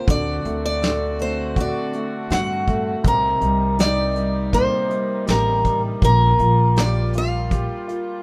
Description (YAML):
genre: acoustic folk-pop ballad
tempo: 81 BPM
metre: 4/4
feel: straight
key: unclear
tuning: A4 = 442 Hz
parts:
  - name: picked steel-string acoustic guitar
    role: melody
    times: 0.0-8.2 s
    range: Bb4 to F#5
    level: -24 LUFS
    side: equal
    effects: none
  - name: warm concert grand piano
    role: accompaniment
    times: 0.0-8.2 s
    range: C3 to A4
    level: -28 LUFS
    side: equal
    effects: none
  - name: warm chamber string section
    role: sustained chords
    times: 0.0-8.2 s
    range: C3 to F#4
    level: -34 LUFS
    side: equal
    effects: none
  - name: upright bass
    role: bass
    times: 0.1-7.6 s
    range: A1 to G2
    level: -25 LUFS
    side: equal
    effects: none
  - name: soft brush drum kit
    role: drums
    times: 0.1-8.1 s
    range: hi-hat, kick drum, snare drum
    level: -24 LUFS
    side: equal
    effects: none
room: little or no reverb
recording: none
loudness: -20 LUFS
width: mono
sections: 0.0-8.2 A section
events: none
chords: 0.1 D7; 3.0 Cm7; 6.0 Gm7/Bb